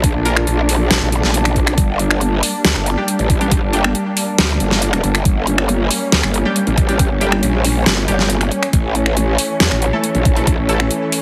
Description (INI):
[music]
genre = heavy wobble dubstep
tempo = 138 BPM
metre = 4/4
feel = half-time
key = unclear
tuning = A4 = 440 Hz
[part]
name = rich studio string section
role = sustained chords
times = 0.0-11.2 s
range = E3 to D4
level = -24 LUFS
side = equal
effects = sidechain pumping, low-pass filter
[part]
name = growl bass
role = bass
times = 0.0-10.9 s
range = G1 to E2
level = -19 LUFS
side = equal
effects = chorus, overdrive
[part]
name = dubstep drum kit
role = drums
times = 0.0-11.2 s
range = finger snaps, hi-hat, snare drum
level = -20 LUFS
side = equal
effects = overdrive
[part]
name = electronic kick drum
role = drums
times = 0.0-10.6 s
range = none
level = -18 LUFS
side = equal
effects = overdrive
[part]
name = orchestra-hit-like synth stab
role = stabs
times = 0.3-10.9 s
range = G3 to Bb4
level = -24 LUFS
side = equal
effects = built-in reverb, digital delay
[sound]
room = little or no reverb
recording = heavily compressed radio sound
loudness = -16 LUFS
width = mono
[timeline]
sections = 0.0-11.2 A section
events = none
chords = 0.0 Bb; 1.8 Gm; 8.7 A